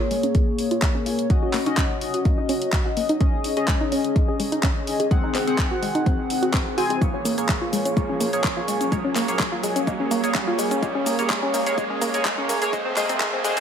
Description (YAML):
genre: progressive house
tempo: 126 BPM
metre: 4/4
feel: straight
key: Bb minor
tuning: A4 = 440 Hz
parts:
  - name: analog pluck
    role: arpeggios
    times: 0.0-13.6 s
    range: Ab3 to Ab4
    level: -26 LUFS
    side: equal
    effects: chorus, sidechain pumping, ping-pong delay
  - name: chorused polysynth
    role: stabs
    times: 0.0-13.6 s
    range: Bb3 to Ab5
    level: -24 LUFS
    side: left 1 dB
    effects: sidechain pumping, ping-pong delay
  - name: riser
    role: sound effects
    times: 1.1-13.6 s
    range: none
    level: -32 LUFS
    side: right 2 dB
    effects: none
  - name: deep house drum kit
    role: drums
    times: 0.1-13.6 s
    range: cabasa, handclaps, hi-hat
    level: -28 LUFS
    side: equal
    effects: sidechain pumping on hats, sidechain pumping on perc
  - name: electronic kick drum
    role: drums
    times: 0.3-13.3 s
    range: none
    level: -22 LUFS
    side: equal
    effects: none
room: moderate digital room reverb, RT60 1.0 s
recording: high-pass filter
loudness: -20 LUFS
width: side -8 dB against mid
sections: 0.0-13.6 A section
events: build-up 0.0-13.6; filter sweep on synth arpeggio sound 0.0-13.6; filter sweep on analog polysynth 0.0-13.6; filter sweep 0.0-13.6; riser 1.1-13.6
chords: 0.0 Bbm7; 1.3 Ebm7; 3.2 Dbsus2; 5.1 Ab7; 7.0 Bbm7; 10.8 Db5; 12.7 Ab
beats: 0.35 0.82 | 1.30 1.78 2.25 2.73 | 3.21 3.68 4.16 4.63 | 5.11 5.59 6.06 6.54 | 7.01 7.49 7.97 8.44 | 8.92 9.40 9.87 10.35 | 10.82 11.30 11.78 12.25 | 12.73 13.21